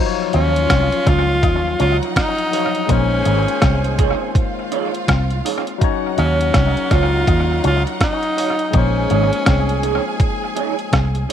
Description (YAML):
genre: lovers rock reggae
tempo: 82 BPM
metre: 4/4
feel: swing 60% on 16ths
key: unclear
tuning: A4 = 444 Hz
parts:
  - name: warm horn section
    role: second line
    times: 0.0-11.3 s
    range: Db3 to C5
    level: -31 LUFS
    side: right 13 dB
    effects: none
  - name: warm symphonic string section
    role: second line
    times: 0.0-11.3 s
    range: Eb4 to Ab5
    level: -28 LUFS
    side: equal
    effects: none
  - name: barky tine electric piano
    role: accompaniment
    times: 0.0-11.3 s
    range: F3 to Db5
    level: -25 LUFS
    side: left 14 dB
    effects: auto-pan
  - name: electric guitar with an envelope filter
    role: riff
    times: 0.3-11.1 s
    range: Ab3 to Eb4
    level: -27 LUFS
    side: left 12 dB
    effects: tape echo
  - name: electric guitar through a small old amp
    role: stabs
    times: 0.3-11.3 s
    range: Eb4 to F5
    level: -26 LUFS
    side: right 14 dB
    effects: phaser
  - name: vintage muted fingered electric bass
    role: bass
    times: 0.3-11.2 s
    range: Ab1 to Eb2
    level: -18 LUFS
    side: equal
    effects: none
  - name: detuned 8-bit digital drum machine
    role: drums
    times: 0.3-11.3 s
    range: hi-hat, kick drum, rim click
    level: -19 LUFS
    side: equal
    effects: tape echo
  - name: clear tenor saxophone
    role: melody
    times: 0.4-10.2 s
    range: Db4 to F4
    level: -20 LUFS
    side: equal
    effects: tape echo
room: light reverb, digital ambience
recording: 1960s-style stereo with parts hard left and right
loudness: -15 LUFS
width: side -9 dB against mid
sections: 0.0-11.3 A section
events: none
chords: 0.0 Ebm9; 2.9 Bbm11; 5.8 Ebm9; 8.7 Bbm11